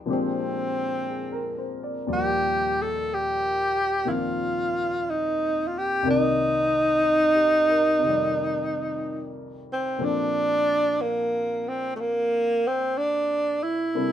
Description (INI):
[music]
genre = jazz ballad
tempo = 61 BPM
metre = 4/4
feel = swing 68% on 8ths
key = unclear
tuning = A4 = 440 Hz
[part]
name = warm baby grand piano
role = accompaniment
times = 0.0-14.1 s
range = C2 to D5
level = -30 LUFS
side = left 3 dB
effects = none
[part]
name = breathy tenor saxophone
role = melody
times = 0.1-14.1 s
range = A3 to A4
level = -22 LUFS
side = right 1 dB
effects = none
[sound]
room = moderate studio reverb, RT60 0.8 s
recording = minimal, uncompressed stereo recording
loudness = -22 LUFS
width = side -10 dB against mid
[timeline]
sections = 0.0-14.1 A section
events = none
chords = 0.1 Bb13; 2.1 Ebmaj9; 6.1 Cm7; 8.0 F13; 10.0 Bbmaj9